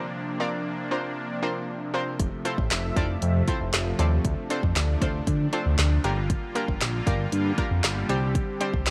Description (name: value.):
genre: dance-pop.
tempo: 117 BPM.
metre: 4/4.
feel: straight.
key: F major.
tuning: A4 = 443 Hz.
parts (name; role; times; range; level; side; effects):
analog pluck; accompaniment; 0.0-8.9 s; G3 to D5; -33 LUFS; equal; chorus, sidechain pumping.
soft supersaw; sustained chords; 0.0-8.9 s; C3 to G4; -34 LUFS; equal; sidechain pumping.
chorused synth bass; bass; 2.2-8.9 s; F1 to D3; -27 LUFS; equal; sidechain pumping.
deep house drum kit; drums; 2.2-8.9 s; handclaps, hi-hat, kick drum, snare drum; -29 LUFS; equal; none.
group handclap; percussion; 2.7-8.9 s; none; -43 LUFS; equal; none.
room: light reverb.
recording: none.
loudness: -26 LUFS.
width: mono.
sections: 0.0-8.9 A section.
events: none.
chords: 0.0 Bbadd9; 2.2 Fmaj7; 4.2 Dm7; 6.0 Gm7; 8.1 Csus2.